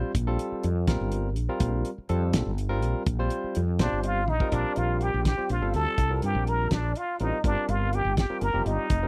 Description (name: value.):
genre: electric jazz fusion.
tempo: 82 BPM (dotted quarters).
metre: 6/8.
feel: straight.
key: Bb major.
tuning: A4 = 441 Hz.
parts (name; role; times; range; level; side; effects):
barky tine electric piano; accompaniment; 0.0-9.1 s; G3 to C5; -35 LUFS; equal; none.
woody fretless electric bass; bass; 0.1-9.1 s; F1 to G2; -30 LUFS; equal; none.
damped 70s drum kit; drums; 0.1-9.0 s; hi-hat, kick drum, snare drum, toms; -30 LUFS; equal; none.
trumpet with plunger mute; melody; 3.8-9.1 s; D4 to Bb4; -31 LUFS; equal; none.
mellow hollow jazz flute; second line; 3.8-9.1 s; D5 to Bb5; -39 LUFS; equal; none.
room: small room ambience.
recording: dry, close 1970s-style studio recording.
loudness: -27 LUFS.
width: mono.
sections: 0.0-4.5 A section; 4.5-9.1 B section.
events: drum fill 4.3.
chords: 0.0 Bbsus2; 4.5 Bb6; 6.0 C5; 7.4 Gm7.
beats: | 0.15 0.88 | 1.61 2.34 | 3.07 3.80 | 4.53 5.26 | 5.99 6.71 | 7.44 8.17 | 8.90.